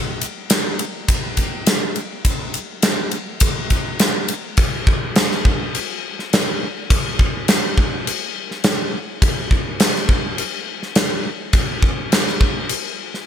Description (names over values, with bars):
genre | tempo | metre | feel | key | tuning
rock | 103 BPM | 4/4 | straight | none | none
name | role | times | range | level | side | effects
gated 80s drum kit | drums | 0.2-13.2 s | crash cymbal, kick drum, ride cymbal, snare drum | -17 LUFS | equal | none
room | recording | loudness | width
light reverb | none | -17 LUFS | side -9 dB against mid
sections
0.0-4.6 A section; 4.6-13.3 B section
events
none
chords
none